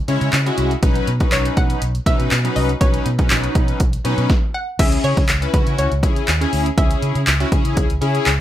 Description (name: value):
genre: dance-pop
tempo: 121 BPM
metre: 4/4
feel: straight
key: C# minor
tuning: A4 = 439 Hz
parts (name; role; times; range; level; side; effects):
- hollow square pluck; melody; 0.0-7.5 s; B4 to F#5; -25 LUFS; left 1 dB; chorus, ping-pong delay
- big bright polysynth; accompaniment; 0.1-8.3 s; F#3 to C#5; -22 LUFS; left 2 dB; wide subtle chorus, sidechain pumping
- vintage muted fingered electric bass; bass; 0.1-8.4 s; B1 to C#3; -21 LUFS; equal; sidechain pumping
- punchy analog drum machine; drums; 0.1-8.4 s; crash cymbal, handclaps, hi-hat, kick drum, snare drum; -18 LUFS; equal; overdrive
room: light reverb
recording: rough home demo mix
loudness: -15 LUFS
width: side -12 dB against mid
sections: 0.0-4.8 A section; 4.8-8.4 B section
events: none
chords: 0.0 C#m; 0.8 Badd9; 4.8 C#m